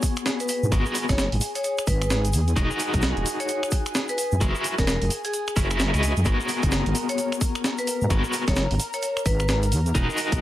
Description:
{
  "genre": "UK garage, two-step garage",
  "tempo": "130 BPM",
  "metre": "4/4",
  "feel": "swing 62% on 16ths",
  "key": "G# minor",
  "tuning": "A4 = 438 Hz",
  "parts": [
    { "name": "airy breathy pad", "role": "sustained chords", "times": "0.0-10.4 s", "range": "G#4 to A#5", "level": "-35 LUFS", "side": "right 1 dB", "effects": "chorus, sidechain pumping" },
    { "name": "electric guitar at the edge of break-up", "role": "stabs", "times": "0.0-10.4 s", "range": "B3 to D#5", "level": "-28 LUFS", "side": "left 2 dB", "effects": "tremolo, digital delay" },
    { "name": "breakbeat sampler-style drum kit", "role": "drums", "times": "0.0-10.4 s", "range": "finger snaps, hi-hat, snare drum", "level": "-29 LUFS", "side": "right 1 dB", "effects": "none" },
    { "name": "electronic kick drum", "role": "drums", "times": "0.0-10.4 s", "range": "none", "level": "-24 LUFS", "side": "equal", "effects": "overdrive" },
    { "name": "egg shaker", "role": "percussion", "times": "0.0-10.4 s", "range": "none", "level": "-35 LUFS", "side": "left 1 dB", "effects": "none" },
    { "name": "vibraphone with hard mallets", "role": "melody", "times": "0.4-9.5 s", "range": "G#4 to C#5", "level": "-30 LUFS", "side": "left 1 dB", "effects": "none" },
    { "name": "deep soft wobble bass", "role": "bass", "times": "0.6-10.4 s", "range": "E1 to G#2", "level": "-23 LUFS", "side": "equal", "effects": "chorus" }
  ],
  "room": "little or no reverb",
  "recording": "vinyl crackle",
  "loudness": "-21 LUFS",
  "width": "side -14 dB against mid",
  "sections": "0.0-10.4 A section",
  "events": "none",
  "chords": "0.0 G#m9; 2.3 Emaj9#11; 4.2 F#9; 6.3 G#m9; 9.7 Emaj9#11"
}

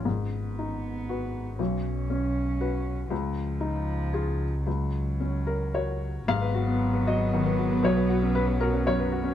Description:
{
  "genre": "neoclassical piano and strings",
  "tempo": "117 BPM",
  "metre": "3/4",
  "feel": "rubato",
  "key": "unclear",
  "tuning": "A4 = 440 Hz",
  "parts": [
    { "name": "felt-muted upright piano", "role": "accompaniment", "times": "0.0-9.3 s", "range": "B1 to F5", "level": "-28 LUFS", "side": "left 3 dB", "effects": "none" },
    { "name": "granular cloud pad", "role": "sustained chords", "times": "0.0-0.1, 7.6-9.3 s", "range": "Cb4 to Cb5", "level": "-38 LUFS", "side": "equal", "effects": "none" },
    { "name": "dark double bass", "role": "bass", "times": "0.0-9.3 s", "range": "Ab1 to Db2", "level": "-30 LUFS", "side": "equal", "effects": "none" },
    { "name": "warm cello", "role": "second line", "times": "0.1-9.3 s", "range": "F3 to C#4", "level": "-34 LUFS", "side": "right 5 dB", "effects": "none" },
    { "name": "rich viola", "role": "accompaniment", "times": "6.3-9.3 s", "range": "Cb4", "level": "-31 LUFS", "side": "right 2 dB", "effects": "none" }
  ],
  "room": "light reverb",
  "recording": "dark, warm production",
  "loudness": "-25 LUFS",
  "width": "side -10 dB against mid",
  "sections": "0.0-6.3 A section; 6.3-9.3 B section",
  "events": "none",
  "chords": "0.0 Abm7; 1.6 Bsus2; 3.1 Dbadd9; 4.7 Gb/Db; 6.3 Abm7; 7.8 Bsus2"
}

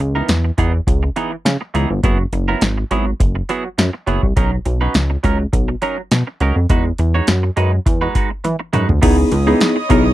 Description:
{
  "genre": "early-eighties boogie funk",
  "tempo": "103 BPM",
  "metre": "4/4",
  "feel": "straight",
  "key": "C# dorian",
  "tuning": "A4 = 440 Hz",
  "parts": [
    { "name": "clean electric guitar", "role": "riff", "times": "0.0-10.1 s", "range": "E3 to C#5", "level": "-21 LUFS", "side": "right 4 dB", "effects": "wide subtle chorus" },
    { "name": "chorused synth bass", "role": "bass", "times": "0.0-10.1 s", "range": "F#1 to E3", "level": "-17 LUFS", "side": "equal", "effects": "none" },
    { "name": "electro analog drum machine", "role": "drums", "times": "0.0-10.0 s", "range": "crash cymbal, hi-hat, kick drum, snare drum, toms", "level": "-18 LUFS", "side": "equal", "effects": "none" },
    { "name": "tine electric piano", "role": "accompaniment", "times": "9.0-10.1 s", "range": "B3 to G#4", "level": "-14 LUFS", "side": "left 1 dB", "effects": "lush chorus" },
    { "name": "warm chamber string section", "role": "sustained chords", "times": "9.0-10.1 s", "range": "C#5 to D#6", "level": "-24 LUFS", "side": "right 1 dB", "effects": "none" }
  ],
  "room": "little or no reverb",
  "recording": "dry, close 1970s-style studio recording",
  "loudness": "-14 LUFS",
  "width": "side -15 dB against mid",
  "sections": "0.0-9.0 A section; 9.0-10.1 B section",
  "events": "drum fill 8.4-9.0",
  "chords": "0.0 C#m9; 2.0 F#9sus4; 4.4 Bmaj9; 6.7 Emaj9; 9.0 C#m9"
}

